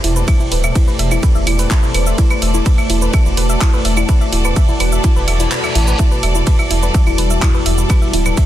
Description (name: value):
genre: melodic techno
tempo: 126 BPM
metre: 4/4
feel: straight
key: unclear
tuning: A4 = 442 Hz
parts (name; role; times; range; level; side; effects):
- deep dark ambient pad; sustained chords; 0.0-8.5 s; G3 to C5; -23 LUFS; equal; chorus, built-in reverb, sidechain pumping
- soft round pluck; arpeggios; 0.0-8.4 s; E4 to E5; -23 LUFS; left 1 dB; chorus, sidechain pumping, tape echo
- round analog bass; bass; 0.0-8.3 s; D1 to A1; -16 LUFS; equal; sidechain pumping
- swarming drone; drone; 0.0-8.5 s; E2 to B2; -27 LUFS; equal; built-in reverb, sidechain pumping
- house drum kit; drums; 0.0-8.5 s; claves, handclaps, hi-hat, ride cymbal, shaker; -21 LUFS; right 3 dB; none
- rich symphonic string section; texture; 0.0-8.5 s; A4 to D5; -24 LUFS; equal; sidechain pumping
- electronic kick drum; drums; 0.3-8.5 s; none; -13 LUFS; equal; none
- reverse cymbal; sound effects; 5.2-6.0 s; none; -27 LUFS; right 1 dB; none
room: little or no reverb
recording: dense, heavily limited modern master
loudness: -12 LUFS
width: side -12 dB against mid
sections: 0.0-8.5 A section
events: reverse cymbal 5.2-6.0; kick drops out 5.5-6.0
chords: 0.0 Am7; 6.0 Emadd9